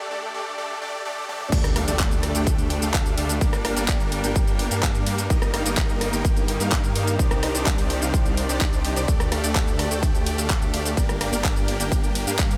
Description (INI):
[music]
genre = EDM, festival progressive house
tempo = 127 BPM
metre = 4/4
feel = straight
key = G minor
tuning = A4 = 441 Hz
[part]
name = supersaw chords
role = riff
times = 0.0-12.6 s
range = A3 to G5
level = -30 LUFS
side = equal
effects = sidechain pumping, delay
[part]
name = pop drum kit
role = drums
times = 1.3-12.6 s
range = crash cymbal, handclaps, hi-hat, ride cymbal, rim click, shaker, toms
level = -30 LUFS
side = equal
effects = none
[part]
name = clear studio string section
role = sustained chords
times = 1.5-12.6 s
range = C3 to D5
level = -35 LUFS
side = equal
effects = sidechain pumping
[part]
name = detuned saw bass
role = bass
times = 1.5-12.6 s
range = G1 to G2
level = -30 LUFS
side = equal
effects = chorus, sidechain pumping
[part]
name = electronic kick drum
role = drums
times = 1.5-12.5 s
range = none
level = -25 LUFS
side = equal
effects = none
[part]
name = impact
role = sound effects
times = 1.5-3.4 s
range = none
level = -35 LUFS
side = equal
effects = none
[sound]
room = little or no reverb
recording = high-pass filter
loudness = -23 LUFS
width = mono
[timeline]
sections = 0.0-1.5 A section; 1.5-12.6 B section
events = break 0.0-1.5; build-up 0.0-1.5; drum fill 1.3; drop 1.5-12.6; impact 1.5-3.4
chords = 0.0 A7sus4; 1.5 Dsus4; 3.4 Gm; 5.3 Eb/G; 7.2 Cmadd9; 9.1 Dsus4; 11.0 Gm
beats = 0.11 0.58 1.05 | 1.52 2.00 2.47 2.94 | 3.41 3.89 4.36 4.83 | 5.30 5.78 6.25 6.72 | 7.19 7.67 8.14 8.61 | 9.08 9.55 10.03 10.50 | 10.97 11.45 11.92 12.39